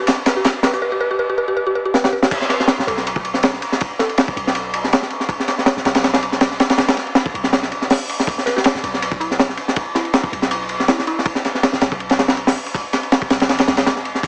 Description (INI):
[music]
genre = drum and bass, jungle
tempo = 161 BPM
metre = 4/4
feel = swing 54% on 16ths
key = E minor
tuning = A4 = 442 Hz
[part]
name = mallet-like synth pluck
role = melody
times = 0.0-4.5, 8.5-11.4 s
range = E4 to B4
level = -22 LUFS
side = equal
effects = chorus, phaser, cassette tape, dub echo
[part]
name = crunchy breakbeat drum kit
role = drums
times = 0.1-14.3 s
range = crash cymbal, hi-hat, kick drum, ride cymbal, snare drum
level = -16 LUFS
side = equal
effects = none
[part]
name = crunchy breakbeat drum kit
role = drums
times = 0.1-0.8, 14.2-14.3 s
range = hi-hat, snare drum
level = -26 LUFS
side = equal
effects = high-pass filter on hats, high-pass filter on snare, high-pass filter on room
[part]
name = warm 808-style bass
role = bass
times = 2.3-14.3 s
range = D1 to B1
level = -35 LUFS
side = equal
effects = tube saturation
[sound]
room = light reverb, studio ambience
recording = vinyl crackle, small speaker sound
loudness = -15 LUFS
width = side -40 dB against mid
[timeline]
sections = 0.0-2.3 A section; 2.3-14.3 B section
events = build-up 0.0-2.3; drum fill 0.0-0.8, 1.9-2.3; drop 2.3-14.3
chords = 0.0 N.C.; 2.3 E5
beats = 0.08 0.45 | 0.82 1.19 1.57 1.94 | 2.31 2.68 3.06 3.43 | 3.80 4.17 4.55 4.92 | 5.29 5.67 6.04 6.41 | 6.78 7.16 7.53 7.90 | 8.27 8.65 9.02 9.39 | 9.77 10.14 10.51 10.88 | 11.26 11.63 12.00 12.37 | 12.75 13.12 13.49 13.86 | 14.24